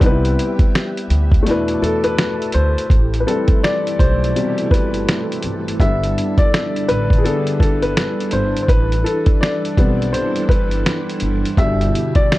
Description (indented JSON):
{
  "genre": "lo-fi hip hop",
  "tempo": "83 BPM",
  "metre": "4/4",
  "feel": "swing 61% on 16ths",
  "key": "A minor",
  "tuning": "A4 = 440 Hz",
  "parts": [
    { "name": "warm upright piano", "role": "accompaniment", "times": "0.0-12.4 s", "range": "B2 to E5", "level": "-19 LUFS", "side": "left 2 dB", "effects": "cassette tape, low-pass filter, plate reverb" },
    { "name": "string machine, violas", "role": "sustained chords", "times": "0.0-12.4 s", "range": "B2 to D6", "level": "-25 LUFS", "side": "right 2 dB", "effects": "ensemble chorus, low-pass filter" },
    { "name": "upright bass", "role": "bass", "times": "0.0-11.9 s", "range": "G1 to E2", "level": "-20 LUFS", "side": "equal", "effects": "none" },
    { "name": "lo-fi sampler-style drum kit", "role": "drums", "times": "0.0-12.4 s", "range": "finger snaps, hi-hat, kick drum, snare drum", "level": "-16 LUFS", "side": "equal", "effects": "none" }
  ],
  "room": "light reverb",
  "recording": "dark, warm production",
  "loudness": "-14 LUFS",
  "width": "side -17 dB against mid",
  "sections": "0.0-2.9 A section; 2.9-12.4 B section",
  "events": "break 1.5-2.9; upright piano solo 2.9-12.4",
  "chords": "0.0 Cmaj7; 1.5 E7sus4; 2.9 Am9; 5.8 Em7/G; 8.7 Am9; 11.6 Em7/G",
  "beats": "| 0.01 0.73 1.46 2.18 | 2.90 3.62 4.35 5.07 | 5.79 6.52 7.24 7.96 | 8.69 9.41 10.13 10.85 | 11.58 12.30"
}